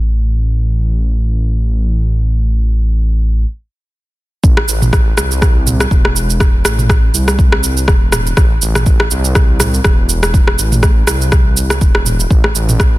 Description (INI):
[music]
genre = afro house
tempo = 122 BPM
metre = 4/4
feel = swing 56% on 16ths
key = A minor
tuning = A4 = 440 Hz
[part]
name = dark detuned saw bass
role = bass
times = 0.0-13.0 s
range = E1 to C2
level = -15 LUFS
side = equal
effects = sidechain pumping
[part]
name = afro-pop drum kit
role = drums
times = 4.4-12.9 s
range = rim click, shaker, toms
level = -15 LUFS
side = right 1 dB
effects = none
[part]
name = electronic kick drum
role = drums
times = 4.4-12.9 s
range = none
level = -11 LUFS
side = equal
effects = none
[sound]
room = little or no reverb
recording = dense, heavily limited modern master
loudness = -10 LUFS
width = side -18 dB against mid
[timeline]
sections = 0.0-4.4 A section; 4.4-13.0 B section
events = stop 3.5-4.4; drop 4.4-13.0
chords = none